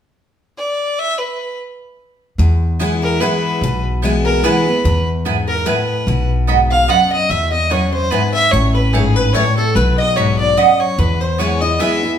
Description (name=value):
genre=bluegrass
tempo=147 BPM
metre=3/4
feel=swing 55% on 8ths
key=E major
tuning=A4 = 440 Hz
part: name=rich fiddle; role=melody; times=0.6-12.1 s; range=G#4 to F#5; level=-18 LUFS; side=equal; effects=none
part: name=picked steel-string acoustic guitar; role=accompaniment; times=2.4-12.2 s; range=E2 to E4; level=-19 LUFS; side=left 3 dB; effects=none
part: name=upright bass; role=bass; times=2.4-11.8 s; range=A1 to E2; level=-17 LUFS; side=equal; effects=none
part: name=mandolin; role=stabs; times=2.8-11.9 s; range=A3 to B5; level=-18 LUFS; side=right 8 dB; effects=none
part: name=lap resonator guitar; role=second line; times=3.0-12.1 s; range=G#4 to F#5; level=-22 LUFS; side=left 2 dB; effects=none
room=wet large studio reverb, RT60 1.1 s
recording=band playing live in one room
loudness=-13 LUFS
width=side -9 dB against mid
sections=0.0-2.4 A section; 2.4-12.2 B section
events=none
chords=0.0 N.C.; 2.4 E; 6.1 B; 7.3 E; 8.5 A; 9.8 B; 11.0 E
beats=0.36 0.77 | 1.17 1.58 1.99 | 2.40 2.81 3.22 | 3.63 4.03 4.44 | 4.85 5.26 5.67 | 6.08 6.48 6.89 | 7.30 7.71 8.12 | 8.53 8.94 9.35 | 9.76 10.16 10.57 | 10.98 11.39 11.80